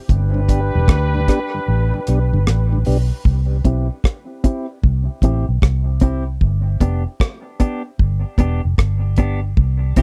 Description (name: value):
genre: dub reggae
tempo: 76 BPM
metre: 4/4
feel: swing 64% on 16ths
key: C major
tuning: A4 = 441 Hz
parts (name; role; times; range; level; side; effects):
- warm horn section; second line; 0.1-2.8 s; D4 to B4; -28 LUFS; equal; dub echo
- vintage muted fingered electric bass; bass; 0.1-10.0 s; E1 to D2; -20 LUFS; equal; none
- deep reggae drum kit; drums; 0.1-10.0 s; hi-hat, kick drum, rim click; -18 LUFS; equal; none
- mellow tonewheel organ; accompaniment; 0.3-3.0 s; G2 to G4; -29 LUFS; equal; slow rotary speaker, dub echo
- clean electric guitar; accompaniment; 3.6-10.0 s; B3 to G4; -25 LUFS; equal; harmonic tremolo, low-pass filter, dub echo
room: little or no reverb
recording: dry, close 1970s-style studio recording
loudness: -18 LUFS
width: mono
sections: 0.0-3.3 A section; 3.3-10.0 B section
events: break 0.0-3.3; kick muted 1.7-3.3; filter sweep on clean electric guitar 3.3-10.0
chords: 0.1 G; 3.3 C; 6.4 G